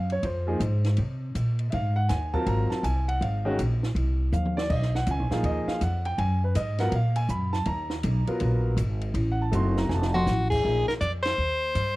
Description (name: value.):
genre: modal jazz.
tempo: 162 BPM.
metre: 4/4.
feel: swing 65% on 8ths.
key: unclear.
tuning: A4 = 441 Hz.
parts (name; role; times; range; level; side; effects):
clear concert grand piano; accompaniment; 0.0-10.9 s; Eb3 to C6; -29 LUFS; equal; cassette tape.
upright bass; bass; 0.0-12.0 s; F1 to C3; -25 LUFS; equal; none.
compact cocktail drum kit; drums; 0.1-11.9 s; crash cymbal, hi-hat, kick drum, ride cymbal, snare drum, toms; -35 LUFS; equal; cassette tape.
bright soprano saxophone; melody; 10.1-11.9 s; Gb4 to D5; -25 LUFS; left 2 dB; cassette tape, plate reverb.
room: little or no reverb.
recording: home recording on cassette.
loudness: -23 LUFS.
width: side -19 dB against mid.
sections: 0.0-10.6 A section; 10.6-12.0 B section.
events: drum fill 4.3-4.7, 9.9-10.3; band accent 11.2.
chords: 0.0 Dbmaj9 (rootless); 4.7 Cbmaj7; 9.2 F7b9; 10.6 Bb9sus4.